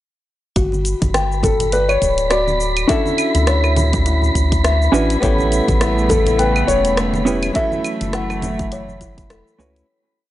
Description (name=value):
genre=sunset chillout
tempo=103 BPM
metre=4/4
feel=swing 57% on 16ths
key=G lydian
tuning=A4 = 441 Hz
part: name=buzzing kalimba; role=arpeggios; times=0.6-9.8 s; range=E4 to G5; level=-25 LUFS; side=left 3 dB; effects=analog delay
part: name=round analog bass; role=bass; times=0.6-9.8 s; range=D1 to D2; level=-19 LUFS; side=equal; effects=none
part: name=electronic kick drum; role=drums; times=0.6-9.3 s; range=none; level=-21 LUFS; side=equal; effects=small room ambience
part: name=smooth R&B drum kit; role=drums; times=0.6-9.9 s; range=claves, hi-hat, rim click, shaker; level=-24 LUFS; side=equal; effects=small room ambience
part: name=wind-like tuned noise texture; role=texture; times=1.2-9.9 s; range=B5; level=-26 LUFS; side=equal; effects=built-in reverb
part: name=congas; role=percussion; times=0.7-9.0 s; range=none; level=-27 LUFS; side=right 1 dB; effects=none
part: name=dark grand piano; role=melody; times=1.4-9.3 s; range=A4 to E5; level=-20 LUFS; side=left 2 dB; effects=tape echo
part: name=hollow-body jazz guitar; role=accompaniment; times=2.9-9.9 s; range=A3 to B4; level=-21 LUFS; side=right 1 dB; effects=auto-pan, analog delay
part: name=rich studio string section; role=sustained chords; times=5.2-9.9 s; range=C#3 to A3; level=-26 LUFS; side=right 1 dB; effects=none
room=light reverb, studio ambience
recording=dry, gritty hardware recording, nothing above 10.5 kHz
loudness=-14 LUFS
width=side -14 dB against mid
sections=0.6-9.9 groove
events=fade-out 6.8-9.9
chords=0.6 Gmaj7; 2.9 Dmaj9; 5.2 A7; 7.6 F#m7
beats=| 0.56 1.14 1.73 2.31 | 2.89 3.48 4.06 4.64 | 5.22 5.80 6.39 6.97 | 7.55 8.13 8.72 9.30